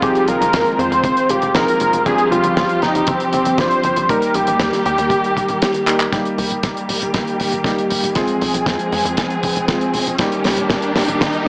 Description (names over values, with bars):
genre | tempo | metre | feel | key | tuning
italo disco | 118 BPM | 4/4 | straight | unclear | A4 = 440 Hz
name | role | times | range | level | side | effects
unison lead | melody | 0.0-5.8 s | C4 to C5 | -19 LUFS | equal | tape echo
dark studio string section | sustained chords | 0.0-11.5 s | Eb3 to Ab4 | -24 LUFS | equal | low-pass filter
warm electric grand piano | stabs | 0.0-11.5 s | G2 to Ab4 | -26 LUFS | equal | low-pass filter
tight sequencer bass | bass | 0.0-11.3 s | Eb1 to F2 | -29 LUFS | equal | none
damped 70s drum kit | drums | 0.0-11.4 s | handclaps, hi-hat, snare drum | -25 LUFS | equal | none
kick drum | drums | 0.0-11.3 s | none | -25 LUFS | equal | none
riser | sound effects | 8.6-11.5 s | none | -28 LUFS | equal | none
room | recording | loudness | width
wet plate reverb, RT60 1.1 s, small room ambience | small speaker sound | -17 LUFS | mono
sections
0.0-6.1 A section; 6.1-11.5 B section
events
drum fill 5.9, 6.1-11.5; filter sweep on string section 6.1-11.5; riser 8.6-11.5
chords
0.0 Fm7; 2.1 Csus4; 4.1 Eb; 8.2 Fm; 10.2 Eb